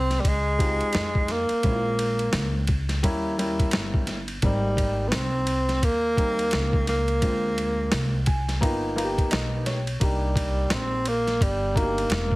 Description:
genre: hip hop, jazz-hop.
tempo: 86 BPM.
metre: 4/4.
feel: swing 60% on 16ths.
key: unclear.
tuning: A4 = 438 Hz.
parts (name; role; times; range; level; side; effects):
breathy tenor saxophone; melody; 0.0-12.4 s; G3 to C4; -25 LUFS; equal; none.
upright bass; bass; 0.0-12.4 s; Fb1 to F2; -28 LUFS; equal; none.
boom bap sampler-style drum kit; drums; 0.1-12.4 s; hi-hat, kick drum, ride cymbal, snare drum; -27 LUFS; equal; none.
dark baby grand piano; accompaniment; 0.6-12.4 s; G3 to Ab5; -30 LUFS; equal; none.
room: moderate studio reverb, RT60 0.6 s.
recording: heavily compressed radio sound, multiband compression.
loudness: -22 LUFS.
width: side -21 dB against mid.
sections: 0.0-12.4 A section.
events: grand piano fill 7.9-10.0.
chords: 0.0 Dbmaj9#11; 1.6 Bbm7; 3.0 Eb7b9; 4.4 Abmaj9; 7.2 Dm7b5; 8.6 G7alt; 10.0 Cm9.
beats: 0.24 0.94 | 1.64 2.34 3.04 3.73 | 4.43 5.13 5.83 6.52 | 7.22 7.92 8.62 9.31 | 10.01 10.71 11.41 12.11.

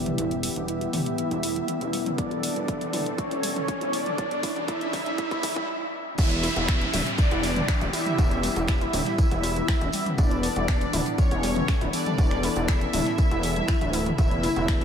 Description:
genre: melodic techno.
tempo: 120 BPM.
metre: 4/4.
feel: straight.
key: E dorian.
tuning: A4 = 440 Hz.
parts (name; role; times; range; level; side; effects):
wide unison lead; melody; 0.0-14.8 s; C#4 to E4; -31 LUFS; equal; ensemble chorus, sidechain pumping, ping-pong delay.
soft supersaw; second line; 0.0-14.8 s; C#5 to E5; -32 LUFS; equal; phaser, sidechain pumping, low-pass filter, ping-pong delay.
warm analog pad; sustained chords; 0.0-14.8 s; C#3 to A4; -34 LUFS; left 2 dB; chorus, sidechain pumping.
warbly dusty pluck; arpeggios; 0.0-14.8 s; E3 to E4; -34 LUFS; left 1 dB; chorus, sidechain pumping, ping-pong delay.
gritty driven synth bass; bass; 0.0-14.8 s; D1 to E1; -30 LUFS; equal; sidechain pumping.
riser and downlifter; sound effects; 1.1-10.2 s; none; -34 LUFS; equal; none.
house drum kit; drums; 0.1-14.8 s; crash cymbal, finger snaps, hi-hat, toms; -32 LUFS; equal; none.
electronic kick drum; drums; 2.2-14.8 s; none; -24 LUFS; equal; none.
tight funk drum kit; drums; 6.2-14.8 s; hi-hat, snare drum, tambourine; -42 LUFS; right 1 dB; none.
room: moderate cathedral reverb, RT60 6.7 s.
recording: dreamy mix soaked in reverb, high-pass filter.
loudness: -22 LUFS.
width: side -8 dB against mid.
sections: 0.0-6.2 A section; 6.2-14.8 B section.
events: build-up 0.0-6.2; filter sweep on synth arpeggio sound 0.0-6.2; filter sweep on analog synth lead 0.0-6.2; filter sweep on supersaw synth 0.0-6.2; riser 1.1-5.7; drum fill 2.2-5.7; stop 5.7-6.2; drop 6.2-14.8.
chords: 0.0 Em; 14.2 A/E.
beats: | 0.18 0.69 1.19 1.69 | 2.19 2.69 3.19 3.69 | 4.18 4.68 5.18 5.68 | 6.18 6.68 7.18 7.68 | 8.19 8.69 9.19 9.69 | 10.19 10.69 11.19 11.69 | 12.19 12.69 13.19 13.69 | 14.19 14.69.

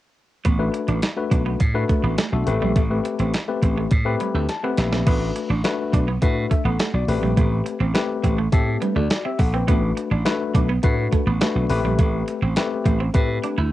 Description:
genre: early-eighties boogie funk.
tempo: 104 BPM.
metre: 4/4.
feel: straight.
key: unclear.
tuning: A4 = 439 Hz.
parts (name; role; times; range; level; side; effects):
slap bass; bass; 0.4-13.7 s; A1 to A2; -22 LUFS; right 1 dB; none.
crisp 8-bit digital drum machine; drums; 0.4-13.6 s; crash cymbal, hi-hat, kick drum, snare drum; -21 LUFS; right 1 dB; cassette tape.
electric guitar at the edge of break-up; riff; 0.5-13.7 s; G3 to E4; -28 LUFS; right 7 dB; analog chorus.
tine electric piano; accompaniment; 0.6-13.6 s; A3 to B5; -24 LUFS; left 5 dB; overdrive, fast stereo tremolo.
room: light reverb.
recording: home recording on cassette.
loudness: -18 LUFS.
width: side -15 dB against mid.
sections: 0.5-5.1 A section; 5.1-13.7 B section.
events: tine electric piano fill 3.9-5.1; drum fill 4.5-5.1.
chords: 0.5 Bm7/A; 2.5 Am9; 5.1 Bm7/A; 7.1 Am9; 9.7 Bm7/A; 11.7 Am9.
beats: | 0.45 1.03 1.60 2.18 | 2.76 3.34 3.91 4.49 | 5.07 5.64 6.22 6.80 | 7.37 7.95 8.53 9.11 | 9.68 10.26 10.84 11.41 | 11.99 12.57 13.14.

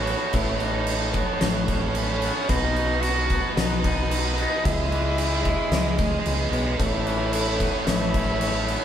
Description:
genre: post-rock.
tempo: 111 BPM.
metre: 4/4.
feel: straight.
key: A lydian.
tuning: A4 = 440 Hz.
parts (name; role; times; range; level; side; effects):
warm cello; melody; 0.0-8.8 s; A3 to F#4; -28 LUFS; left 1 dB; none.
rich studio string section; sustained chords; 0.0-8.8 s; B4 to D#6; -38 LUFS; equal; none.
twangy electric guitar; arpeggios; 0.0-8.8 s; A2 to D#4; -33 LUFS; left 2 dB; none.
crunchy overdriven guitar; riff; 0.0-8.8 s; F#4 to D#5; -28 LUFS; right 5 dB; none.
growling fingered electric bass; bass; 0.0-8.8 s; A1 to C#2; -27 LUFS; equal; overdrive.
oversized low-tuned drum kit; drums; 0.1-8.8 s; crash cymbal, kick drum, snare drum; -26 LUFS; left 1 dB; none.
vibraphone with soft mallets; arpeggios; 6.8-8.8 s; A4 to C#5; -35 LUFS; left 1 dB; none.
room: moderate stone room reverb, RT60 1.1 s.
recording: band playing live in one room.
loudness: -21 LUFS.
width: side -9 dB against mid.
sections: 0.0-8.8 A section.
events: none.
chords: 0.0 Aadd9; 2.5 B; 4.6 C#madd9; 6.8 Aadd9.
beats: | 0.34 0.88 1.42 1.96 | 2.49 3.03 3.57 4.11 | 4.65 5.19 5.73 6.26 | 6.80 7.34 7.88 8.42.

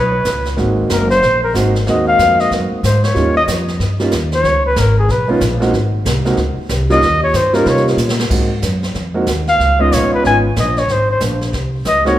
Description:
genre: jazz, small-group swing and bop.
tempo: 186 BPM.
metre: 4/4.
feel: swing 62% on 8ths.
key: Ab mixolydian.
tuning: A4 = 440 Hz.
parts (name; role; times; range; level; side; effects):
mellow trumpet; melody; 0.0-12.2 s; Ab4 to Ab5; -15 LUFS; left 1 dB; none.
upright bass; bass; 0.0-12.2 s; Gb1 to C3; -17 LUFS; equal; none.
jazz brush drum kit; drums; 0.2-12.2 s; brushed snare drum, crash cymbal, hi-hat, kick drum, snare drum; -23 LUFS; right 1 dB; none.
warm concert grand piano; accompaniment; 0.6-12.2 s; G3 to Gb4; -18 LUFS; right 2 dB; none.
room: wet recital hall reverb, RT60 1.9 s.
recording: recorded in a church or concert hall.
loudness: -12 LUFS.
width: side -13 dB against mid.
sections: 0.0-8.3 A section; 8.3-12.2 A section.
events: trumpet solo 0.0-12.2; drum fill 8.0-8.3.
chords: 0.0 Db7(no3); 0.6 Ab7; 3.2 Eb7; 4.4 Db7(no3); 5.7 Ab; 7.0 Eb7; 8.3 Ab7; 9.6 Db7; 10.9 Ab.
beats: 0.26 | 0.58 0.90 1.22 1.54 | 1.87 2.19 2.51 2.83 | 3.15 3.48 3.80 4.12 | 4.44 4.76 5.09 5.41 | 5.73 6.05 6.38 6.70 | 7.02 7.34 7.66 7.99 | 8.31 8.63 8.95 9.28 | 9.60 9.92 10.24 10.56 | 10.89 11.21 11.53 11.85 | 12.18.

